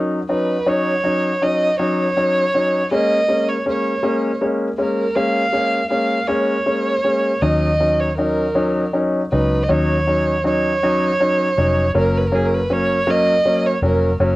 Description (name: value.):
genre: pop.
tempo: 53 BPM (dotted quarters).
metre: 6/8.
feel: straight.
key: Eb minor.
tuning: A4 = 435 Hz.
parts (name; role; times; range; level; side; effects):
warm concert grand piano; accompaniment; 0.0-14.4 s; Gb3 to Eb4; -19 LUFS; left 1 dB; cassette tape.
warm violin; melody; 0.3-14.4 s; Ab4 to F5; -19 LUFS; right 2 dB; cassette tape.
vintage muted fingered electric bass; bass; 7.4-14.4 s; F1 to Eb2; -22 LUFS; equal; none.
room: moderate small room reverb, RT60 0.5 s.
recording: home recording on cassette.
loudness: -16 LUFS.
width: side -18 dB against mid.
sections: 0.0-14.4 A section.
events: none.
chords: 0.0 Ebm7; 2.9 Bbm7; 7.4 Ebm7; 12.0 Gb.